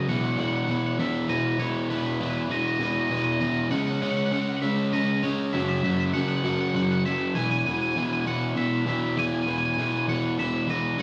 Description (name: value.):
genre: rock.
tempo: 99 BPM.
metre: 3/4.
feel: straight.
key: E major.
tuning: A4 = 438 Hz.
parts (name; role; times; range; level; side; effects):
twangy electric guitar; melody; 0.0-11.0 s; B4 to G#5; -31 LUFS; equal; none.
overdriven semi-hollow guitar; riff; 0.0-11.0 s; E2 to C#4; -27 LUFS; equal; none.
room: wet large studio reverb, RT60 1.4 s.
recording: band playing live in one room, nothing above 10.4 kHz.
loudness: -26 LUFS.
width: mono.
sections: 0.0-11.0 A section.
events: none.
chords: 0.1 E5; 3.7 C#5; 5.5 F#5; 7.3 E.